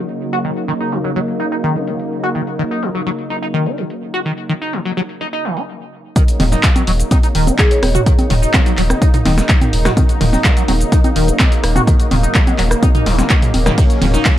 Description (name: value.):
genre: acid house.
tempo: 126 BPM.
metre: 4/4.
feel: straight.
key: Eb minor.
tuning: A4 = 441 Hz.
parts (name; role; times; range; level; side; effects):
lush unison pad; sustained chords; 0.0-14.4 s; Db3 to Eb4; -22 LUFS; equal; chorus, sidechain pumping.
liquid acid bass; riff; 0.0-14.3 s; Eb3 to Gb4; -20 LUFS; left 1 dB; phaser, tube saturation, lush chorus, ping-pong delay.
punchy analog drum machine; drums; 0.1-14.4 s; cabasa, congas, handclaps, hi-hat, ride cymbal, rim click, snare drum, toms; -18 LUFS; equal; low-pass filter on hats, low-pass filter on perc, low-pass filter on toms, low-pass filter on snare, low-pass filter on cymbals.
electronic kick drum; drums; 6.2-14.4 s; none; -12 LUFS; equal; none.
warm sub bass; bass; 6.4-14.2 s; Eb1; -16 LUFS; equal; sidechain pumping.
vibraphone with medium hard mallets; melody; 7.6-8.1 s; Ab4 to Db5; -22 LUFS; equal; digital delay.
room: little or no reverb.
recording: none.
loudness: -13 LUFS.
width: side -12 dB against mid.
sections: 0.0-6.2 A section; 6.2-14.4 B section.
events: stop 5.7-6.2; drop 6.2-14.4.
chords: 0.0 Ebm7.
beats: | 0.45 0.92 1.40 1.87 | 2.35 2.83 3.30 3.78 | 4.25 4.73 5.21 5.68 | 6.16 6.64 7.11 7.59 | 8.06 8.54 9.02 9.49 | 9.97 10.45 10.92 11.40 | 11.87 12.35 12.83 13.30 | 13.78 14.26.